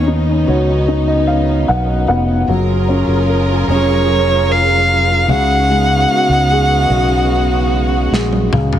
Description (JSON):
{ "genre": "pop ballad", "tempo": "75 BPM", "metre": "4/4", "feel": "straight", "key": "F# major", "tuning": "A4 = 440 Hz", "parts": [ { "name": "rich violin", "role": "melody", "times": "0.0-8.1 s", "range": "C#5 to F#5", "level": "-16 LUFS", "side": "right 1 dB", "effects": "none" }, { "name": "warm upright piano", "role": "accompaniment", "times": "0.0-8.8 s", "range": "C#3 to F#5", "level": "-18 LUFS", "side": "left 2 dB", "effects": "none" }, { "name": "warm studio string section", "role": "sustained chords", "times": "0.0-8.8 s", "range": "C#3 to A#4", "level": "-19 LUFS", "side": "right 2 dB", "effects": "stereo widening" }, { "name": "fingered electric bass", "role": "bass", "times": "0.0-8.8 s", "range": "E#1 to D#2", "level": "-16 LUFS", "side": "equal", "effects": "none" }, { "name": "modern studio drum kit", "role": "drums", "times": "8.1-8.8 s", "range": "snare drum, toms", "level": "-16 LUFS", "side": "equal", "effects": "none" } ], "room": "light reverb, small room ambience", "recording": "heavily compressed radio sound, multiband compression", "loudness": "-11 LUFS", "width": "side -10 dB against mid", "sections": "0.0-8.8 A section", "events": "upright piano fill 0.1-2.5; drum fill 8.1-8.8", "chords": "0.0 Badd9; 2.5 F#maj7; 5.3 C#7sus4" }